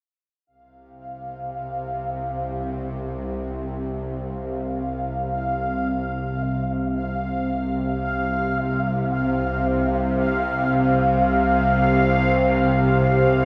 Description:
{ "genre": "dark ambient drone", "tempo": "free time", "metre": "none", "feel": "none", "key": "unclear", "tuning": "A4 = 440 Hz", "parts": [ { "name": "deep dark ambient pad", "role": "sustained chords", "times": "3.3-13.4 s", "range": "C4 to C5", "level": "-27 LUFS", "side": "equal", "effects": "chorus, built-in reverb" }, { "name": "bowed-like drone", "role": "drone", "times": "1.1-13.4 s", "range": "C2 to C3", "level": "-27 LUFS", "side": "equal", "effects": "built-in reverb" }, { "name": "bubbling stepped-filter texture", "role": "texture", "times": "0.5-13.4 s", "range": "F5", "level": "-28 LUFS", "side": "equal", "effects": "chorus, built-in reverb" } ], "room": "wet cathedral reverb, RT60 5.1 s", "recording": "none", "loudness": "-23 LUFS", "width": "mono", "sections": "0.5-13.4 A section", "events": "none", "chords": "0.5 C5", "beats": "free time" }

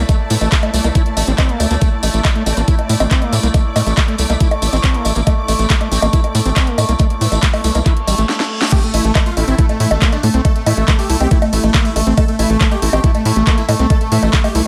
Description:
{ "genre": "psychedelic trance", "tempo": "139 BPM", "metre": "4/4", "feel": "straight", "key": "A phrygian", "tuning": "A4 = 440 Hz", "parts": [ { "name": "overtone-sweeping drone", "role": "sustained chords", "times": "0.0-14.7 s", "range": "A3", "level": "-27 LUFS", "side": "equal", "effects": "chorus, built-in reverb, sidechain pumping" }, { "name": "overdriven acid bass", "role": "riff", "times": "0.0-14.6 s", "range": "G3 to E4", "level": "-24 LUFS", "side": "equal", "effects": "distortion, sidechain pumping, delay" }, { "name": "tight sequencer bass", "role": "bass", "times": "0.0-14.6 s", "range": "A1 to A2", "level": "-18 LUFS", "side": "equal", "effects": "none" }, { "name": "clear symphonic string section", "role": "texture", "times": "0.0-8.3 s", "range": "A3 to D6", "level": "-29 LUFS", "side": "equal", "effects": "sidechain pumping" }, { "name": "drum and bass drum kit", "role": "drums", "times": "0.1-14.6 s", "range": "bongos, crash cymbal, handclaps, hi-hat, snare drum", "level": "-22 LUFS", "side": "equal", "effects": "overdrive" }, { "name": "electronic kick drum", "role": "drums", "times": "0.1-14.4 s", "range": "none", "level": "-16 LUFS", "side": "equal", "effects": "overdrive" }, { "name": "tambourine", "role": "percussion", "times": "0.1-8.3 s", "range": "none", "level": "-29 LUFS", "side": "equal", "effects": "none" }, { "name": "vowel-sweep wobble bass", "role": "second line", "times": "0.3-14.7 s", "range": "E3 to C4", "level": "-35 LUFS", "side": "equal", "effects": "none" }, { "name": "reverse cymbal", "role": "sound effects", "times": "8.0-8.7 s", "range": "none", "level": "-29 LUFS", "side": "equal", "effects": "none" }, { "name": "dense compressed supersaw", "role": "melody", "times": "8.7-14.6 s", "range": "A3 to A4", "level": "-22 LUFS", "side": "equal", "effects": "phaser, sidechain pumping, tape echo" } ], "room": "little or no reverb", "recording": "none", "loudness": "-15 LUFS", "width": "mono", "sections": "0.0-8.7 A section; 8.7-14.7 B section", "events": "reverse cymbal 8.0-8.7; drum fill 8.3-8.7; band accent 8.6; drop 8.7-14.7", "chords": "0.0 A5", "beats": "| 0.09 0.52 0.95 1.38 | 1.81 2.25 2.68 3.11 | 3.54 3.97 4.41 4.84 | 5.27 5.70 6.13 6.56 | 7.00 7.43 7.86 8.29 | 8.72 9.15 9.59 10.02 | 10.45 10.88 11.31 11.74 | 12.18 12.61 13.04 13.47 | 13.90 14.33" }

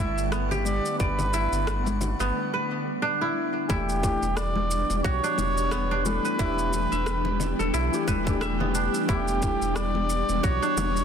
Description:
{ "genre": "organic downtempo", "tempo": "89 BPM", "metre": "4/4", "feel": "swing 57% on 16ths", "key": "E dorian", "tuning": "A4 = 444 Hz", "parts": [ { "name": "trumpet with cup mute", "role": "melody", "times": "0.0-11.0 s", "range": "G4 to E5", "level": "-30 LUFS", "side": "right 1 dB", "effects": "digital delay" }, { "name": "ethereal airy pad", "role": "sustained chords", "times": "0.0-11.0 s", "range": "D3 to F#5", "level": "-31 LUFS", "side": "equal", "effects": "ensemble chorus, built-in reverb, sidechain pumping" }, { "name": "kora", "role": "arpeggios", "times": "0.0-11.0 s", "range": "B3 to E5", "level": "-30 LUFS", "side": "right 1 dB", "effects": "digital delay" }, { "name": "warm sub bass", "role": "bass", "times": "0.0-11.0 s", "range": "E1 to B1", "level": "-29 LUFS", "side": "equal", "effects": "sidechain pumping" }, { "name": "drifting glass-harmonics texture", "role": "texture", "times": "0.0-2.4 s", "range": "D4 to C#6", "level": "-42 LUFS", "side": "right 1 dB", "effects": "chorus, built-in reverb" }, { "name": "electronic shaker and rim click", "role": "drums", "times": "0.2-11.0 s", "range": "none", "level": "-36 LUFS", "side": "equal", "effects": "soft clipping on snare" }, { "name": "congas", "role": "percussion", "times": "0.5-10.9 s", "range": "none", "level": "-34 LUFS", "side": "left 4 dB", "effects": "none" }, { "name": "electronic kick drum", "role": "drums", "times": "1.0-10.6 s", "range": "none", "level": "-29 LUFS", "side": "equal", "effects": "overdrive" }, { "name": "felt-muted upright piano", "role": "accompaniment", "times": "3.7-9.6 s", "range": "E3 to B4", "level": "-32 LUFS", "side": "left 4 dB", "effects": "sidechain pumping, digital delay" } ], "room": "light reverb, small room reverb", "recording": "dense, heavily limited modern master", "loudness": "-23 LUFS", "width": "side -7 dB against mid", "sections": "0.0-3.7 A section; 3.7-11.0 B section", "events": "none", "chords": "0.0 Gmaj9; 3.7 Em7", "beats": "0.33 | 1.00 1.67 2.35 3.02 | 3.69 4.37 5.04 5.72 | 6.39 7.07 7.74 8.41 | 9.09 9.76 10.44" }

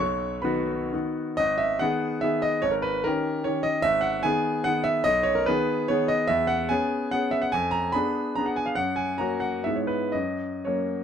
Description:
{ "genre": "classical, romantic triple-time dance for piano with dotted rhythms", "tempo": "113-161 BPM", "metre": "3/4", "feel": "rubato", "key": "G# minor", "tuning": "A4 = 441 Hz", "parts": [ { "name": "bright concert grand piano", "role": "solo", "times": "0.0-11.0 s", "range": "G#1 to C#6", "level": "-23 LUFS", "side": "equal", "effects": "none" } ], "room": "light reverb", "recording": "dark, warm production", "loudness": "-23 LUFS", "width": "side -8 dB against mid", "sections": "0.0-1.4 A section; 1.4-11.0 B section", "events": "none", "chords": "0.0 B; 1.4 G#m; 2.6 D#7/G#; 3.8 G#m; 5.0 G#m/B; 6.3 C#m7/E; 7.5 Fdim7; 8.8 F#; 9.6 E/G#; 10.1 F#", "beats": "0.45 0.93 | 1.39 1.81 2.23 | 2.63 3.05 3.46 | 3.84 4.24 4.66 | 5.05 5.46 5.88 | 6.28 6.70 7.13 | 7.52 7.93 8.36 | 8.77 9.19 9.65 | 10.14 10.65" }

